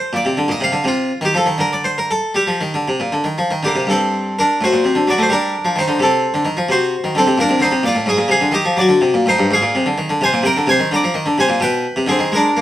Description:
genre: classical, baroque-style suite movement for harpsichord.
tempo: 77-88 BPM (dotted quarters).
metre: 6/8.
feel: rubato.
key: G minor.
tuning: A4 = 440 Hz.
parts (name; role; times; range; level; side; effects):
harpsichord; solo; 0.0-12.6 s; G2 to Bb5; -14 LUFS; equal; none.
room: moderate stone room reverb, RT60 0.9 s.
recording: none.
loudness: -14 LUFS.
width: side -13 dB against mid.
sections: 0.0-3.9 A section; 3.9-12.6 B section.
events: none.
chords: 0.1 Bbadd9; 0.9 Cm; 1.6 N.C.; 2.4 Gm; 3.9 G5; 4.6 D7/A; 5.3 Gm; 6.0 Adim/C; 6.7 D7/C; 7.4 Cm11; 8.1 Ab; 8.8 D7; 9.5 Fm/Ab; 10.9 Bb9; 11.6 G/B.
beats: 0.15 | 0.85 1.59 | 2.35 3.13 | 3.89 4.61 | 5.31 6.00 | 6.69 7.38 | 8.06 8.75 | 9.49 10.20 | 10.89 11.59 | 12.30.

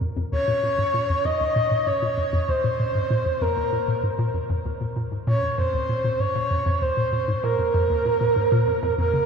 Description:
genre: ambient.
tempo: 97 BPM.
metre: 4/4.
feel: straight.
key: Bb minor.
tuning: A4 = 442 Hz.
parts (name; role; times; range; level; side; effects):
hollow square pluck; riff; 0.0-9.3 s; Eb2 to Db3; -24 LUFS; left 1 dB; chorus, cassette tape, ping-pong delay.
breathy flute-like synth lead; melody; 0.3-9.3 s; Bb4 to Eb5; -23 LUFS; right 1 dB; lush chorus, ping-pong delay.
room: wet cathedral reverb, RT60 6.0 s.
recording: in a vast, echoing space.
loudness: -20 LUFS.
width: side -6 dB against mid.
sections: 0.0-9.3 A section.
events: filter sweep on synth arpeggio sound 0.0-9.3.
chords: 0.0 Bbm.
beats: | 0.01 0.63 1.25 1.87 | 2.49 3.10 3.72 4.34 | 4.96 5.58 6.20 6.82 | 7.43 8.05 8.67.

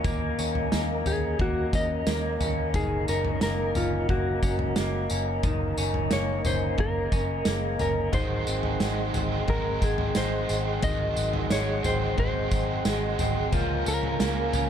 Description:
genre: dream pop.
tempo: 89 BPM.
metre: 4/4.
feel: straight.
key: Gb lydian.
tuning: A4 = 441 Hz.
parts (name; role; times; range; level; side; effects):
mellow tonewheel organ; sustained chords; 0.0-14.7 s; Ab4 to C6; -33 LUFS; right 2 dB; fast rotary speaker.
electric guitar through a small old amp; arpeggios; 0.0-14.7 s; Eb3 to Db4; -32 LUFS; left 3 dB; wide subtle chorus, tape echo.
vintage muted fingered electric bass; bass; 0.0-14.7 s; Gb1 to Eb2; -30 LUFS; equal; none.
loose indie drum kit; drums; 0.0-14.7 s; kick drum, snare drum, tambourine, toms; -29 LUFS; equal; none.
mellow electric guitar; melody; 1.1-14.7 s; F4 to Eb5; -32 LUFS; left 1 dB; tremolo, tape echo.
crunchy overdriven guitar; accompaniment; 8.1-14.7 s; Ab2 to Ab4; -35 LUFS; right 8 dB; harmonic tremolo, lush chorus.
room: light reverb, small room ambience.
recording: none.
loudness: -24 LUFS.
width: side -9 dB against mid.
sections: 0.0-14.7 A section.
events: none.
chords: 0.0 Eb5; 2.7 Gb6; 8.1 Ab7; 13.5 Db6.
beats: | 0.04 0.72 1.39 2.06 | 2.74 3.41 4.09 4.76 | 5.44 6.11 6.79 7.46 | 8.13 8.81 9.48 10.15 | 10.83 11.50 12.18 12.85 | 13.53 14.20.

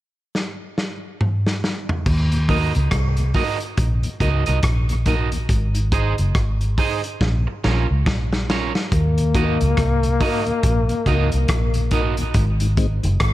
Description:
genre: dub reggae.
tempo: 70 BPM.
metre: 4/4.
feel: swing 60% on 16ths.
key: Eb dorian.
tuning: A4 = 439 Hz.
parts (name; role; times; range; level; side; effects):
vintage drum kit; drums; 0.3-13.3 s; crash cymbal, hi-hat, kick drum, rim click, snare drum, toms; -22 LUFS; equal; none.
vintage muted fingered electric bass; bass; 2.1-13.3 s; Gb1 to Eb2; -19 LUFS; equal; none.
mellow tonewheel organ; accompaniment; 2.3-13.1 s; Eb2 to Gb4; -30 LUFS; left 3 dB; slow rotary speaker.
electric guitar at the edge of break-up; accompaniment; 2.5-12.1 s; Db4 to Eb5; -26 LUFS; right 7 dB; tape echo.
clear trombone; second line; 8.9-11.9 s; Bb3; -24 LUFS; left 5 dB; tape echo.
room: studio ambience.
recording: dark, warm production.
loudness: -18 LUFS.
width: side -15 dB against mid.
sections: 0.0-2.1 A section; 2.1-8.9 B section; 8.9-13.3 C section.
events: drum fill 0.3-2.1, 7.2-8.9.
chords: 0.0 N.C.; 2.1 Ebm; 5.5 Ab; 7.2 Bbm; 8.9 Ebm; 12.3 Ab.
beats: 0.35 1.20 | 2.06 2.92 3.77 4.63 | 5.49 6.35 7.20 8.06 | 8.92 9.78 10.63 11.49 | 12.35 13.21.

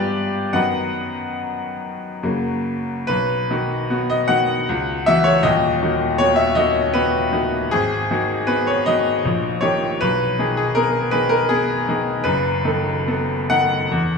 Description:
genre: classical, romantic character piece for solo piano.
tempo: 67-82 BPM.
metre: 3/4.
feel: rubato.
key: B major.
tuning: A4 = 441 Hz.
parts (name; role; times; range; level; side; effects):
bright grand piano; solo; 0.0-14.2 s; D#1 to F#5; -17 LUFS; left 1 dB; none.
room: wet recital hall reverb, RT60 1.7 s.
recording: recorded in a church or concert hall, small room ambience.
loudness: -17 LUFS.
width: side -4 dB against mid.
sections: 0.0-3.1 A section; 3.1-14.2 B section.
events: none.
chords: 0.0 G7; 0.5 B/F#; 2.2 F#; 3.1 B; 4.7 F#5/C#; 5.4 B/D#; 7.7 G#m7; 9.2 D#7/A#; 10.0 G#m/B; 12.3 B7/F#.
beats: | 0.54 1.39 2.23 | 3.08 3.90 4.68 | 5.44 6.19 6.95 | 7.71 8.48 9.24 | 10.01 10.76 11.50 | 12.25 13.06 13.89.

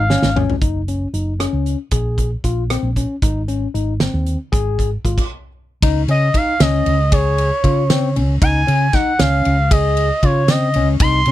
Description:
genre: progressive instrumental, band music in an uneven meter.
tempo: 231 BPM (eighths).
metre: 5/8.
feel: straight.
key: Db major.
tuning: A4 = 440 Hz.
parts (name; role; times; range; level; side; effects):
expressive portamento lead; melody; 0.0-0.4, 6.1-11.3 s; Db5 to C6; -18 LUFS; equal; chorus.
overdriven tine electric piano; arpeggios; 0.0-11.3 s; C4 to Ab4; -22 LUFS; moving between left 9 dB and left 2 dB; auto-pan.
woody fretless electric bass; bass; 0.0-11.3 s; Gb1 to Db3; -18 LUFS; equal; none.
loose indie drum kit; drums; 0.1-11.3 s; crash cymbal, hi-hat, kick drum, ride cymbal, rim click, snare drum, toms; -19 LUFS; right 1 dB; none.
room: little or no reverb.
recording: none.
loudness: -15 LUFS.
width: side -14 dB against mid.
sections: 0.6-5.8 A section; 5.8-11.3 B section.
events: drum fill 0.1-0.6; stop 5.2-5.8.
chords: 0.0 Db/Ab; 0.6 Gb5; 1.9 Bbm7; 3.2 Ab; 4.5 Fm/Ab; 5.8 Dbsus2.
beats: 0.10 0.36 | 0.62 0.88 1.14 1.40 1.66 | 1.92 2.18 2.44 2.70 2.96 | 3.22 3.48 3.74 4.00 4.26 | 4.53 4.79 5.04 5.30 5.56 | 5.82 6.08 6.34 6.60 6.86 | 7.12 7.38 7.64 7.90 8.16 | 8.42 8.68 8.94 9.20 9.46 | 9.71 9.97 10.23 10.49 10.75 | 11.01 11.27.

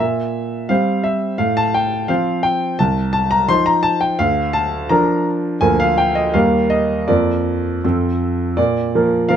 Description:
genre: classical-period piano sonatina.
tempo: 79-87 BPM.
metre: 2/4.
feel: rubato.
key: Bb major.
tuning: A4 = 440 Hz.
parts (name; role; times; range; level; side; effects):
warm concert grand piano; solo; 0.0-9.4 s; C2 to C6; -15 LUFS; equal; none.
room: light reverb.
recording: close, detailed microphones.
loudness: -15 LUFS.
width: side -8 dB against mid.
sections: 0.0-8.6 A section.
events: none.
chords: 0.0 C7/Bb; 1.4 F/A; 2.8 F5/C; 4.2 Bb/D; 6.3 Eb; 7.1 Bb/F; 7.8 F; 8.6 Bb.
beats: | 0.01 0.70 | 1.39 2.09 | 2.79 3.48 | 4.19 4.90 | 5.62 6.34 | 7.09 7.84 | 8.58 9.30.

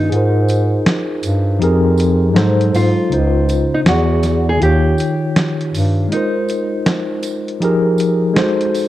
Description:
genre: lo-fi hip hop.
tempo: 80 BPM.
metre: 4/4.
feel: swing 64% on 16ths.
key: Ab major.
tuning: A4 = 440 Hz.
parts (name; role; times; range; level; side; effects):
nylon-string guitar; melody; 0.0-7.6 s; Eb4 to G#4; -22 LUFS; equal; low-pass filter, analog delay.
tine electric piano; accompaniment; 0.0-8.9 s; Db3 to D5; -16 LUFS; left 1 dB; medium stereo tremolo, low-pass filter.
dark bass clarinet; bass; 0.0-6.1 s; Db2 to Ab2; -16 LUFS; equal; none.
lo-fi sampler-style drum kit; drums; 0.1-8.9 s; hi-hat, snare drum; -19 LUFS; equal; none.
tambourine; percussion; 0.5-8.9 s; none; -36 LUFS; right 8 dB; none.
room: moderate spring reverb, RT60 2.1 s.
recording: dark, warm production.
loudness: -13 LUFS.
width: side -14 dB against mid.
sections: 0.0-8.9 A section.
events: break 0.0-8.9.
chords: 0.1 Ab69; 1.6 Fm11; 2.4 Ab7b9; 3.1 Dbmaj9; 3.9 E9; 4.6 Eb9; 6.1 Ab69; 7.6 Fm11; 8.4 Ab7b9.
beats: | 0.11 0.86 1.61 2.36 | 3.11 3.86 4.61 5.36 | 6.11 6.86 7.61 8.36.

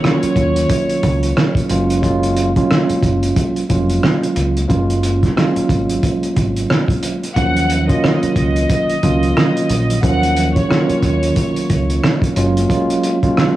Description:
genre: hip hop, boom-bap hip-hop.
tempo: 90 BPM.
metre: 4/4.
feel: swing 59% on 16ths.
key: Eb minor.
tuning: A4 = 440 Hz.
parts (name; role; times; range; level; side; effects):
clear studio violin section; melody; 0.0-1.5, 7.4-12.2 s; Db5 to Gb5; -22 LUFS; equal; high-pass filter, low-pass filter, tape echo.
tine electric piano; accompaniment; 0.0-13.6 s; Eb3 to F4; -17 LUFS; right 2 dB; medium stereo tremolo, high-pass filter, low-pass filter.
cloth-damped thuddy drum kit; drums; 0.0-13.6 s; hi-hat, kick drum, rim click, snare drum; -18 LUFS; right 1 dB; none.
deep dub fingered electric bass; bass; 0.2-12.6 s; F1 to Eb2; -19 LUFS; equal; none.
room: light reverb.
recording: vinyl crackle, small room ambience.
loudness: -13 LUFS.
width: side -14 dB against mid.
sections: 0.0-13.6 A section.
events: none.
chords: 0.0 Ebm7; 1.7 Gbmaj7; 7.4 Ebm7; 12.4 Gbmaj7.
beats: 0.03 0.70 1.36 | 2.03 2.70 3.36 4.03 | 4.70 5.36 6.03 6.70 | 7.36 8.03 8.70 9.36 | 10.03 10.70 11.36 12.03 | 12.70 13.36.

